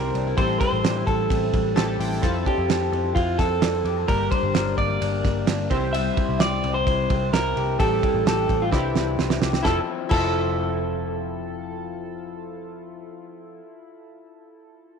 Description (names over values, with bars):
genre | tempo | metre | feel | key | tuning
jangly indie pop | 129 BPM | 4/4 | straight | F major | A4 = 439 Hz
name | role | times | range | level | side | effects
electric guitar through a small old amp | melody | 0.0-13.1 s | E4 to E5 | -26 LUFS | right 2 dB | slapback echo
chorused retro synth keys | accompaniment | 0.0-15.0 s | Bb3 to A5 | -31 LUFS | right 1 dB | none
electric guitar through a small old amp | arpeggios | 0.0-13.7 s | E3 to Bb4 | -29 LUFS | left 13 dB | none
vintage muted picked electric bass | bass | 0.0-13.1 s | F1 to F2 | -28 LUFS | equal | none
cloth-damped thuddy drum kit | drums | 0.1-10.2 s | crash cymbal, hi-hat, kick drum, ride cymbal, snare drum | -25 LUFS | right 3 dB | none
room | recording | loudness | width
light reverb, small room ambience | 1960s-style stereo, lossy compression artefacts | -20 LUFS | side -6 dB against mid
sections
0.0-9.7 A section; 9.7-13.4 B section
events
synth keys fill 1.5-2.2; drum fill 8.7-9.7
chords
0.4 Am7; 2.2 Fmaj7; 4.1 Gm; 5.7 C; 7.8 Am7; 8.7 Cadd9; 9.7 Fmaj7